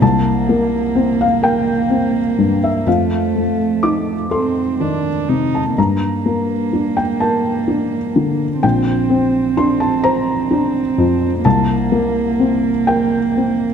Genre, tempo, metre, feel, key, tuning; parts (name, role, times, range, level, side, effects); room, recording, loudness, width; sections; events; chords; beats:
neoclassical piano and strings; 42 BPM (dotted quarters); 6/8; rubato; A4 = 440 Hz
warm cello; second line; 0.0-13.7 s; A3 to Eb4; -19 LUFS; right 6 dB
felt-muted upright piano; accompaniment; 0.0-13.7 s; Bb1 to D6; -16 LUFS; left 3 dB
moderate concert hall reverb, RT60 2.2 s; dark, warm production; -14 LUFS; side -7 dB against mid
0.0-13.7 A section
0.0 C5; 2.9 F7; 5.8 Gm; 8.6 Bbadd9; 11.4 C5
| 0.02 1.43 | 2.86 4.31 | 5.77 7.21 | 8.63 10.05 | 11.45 12.88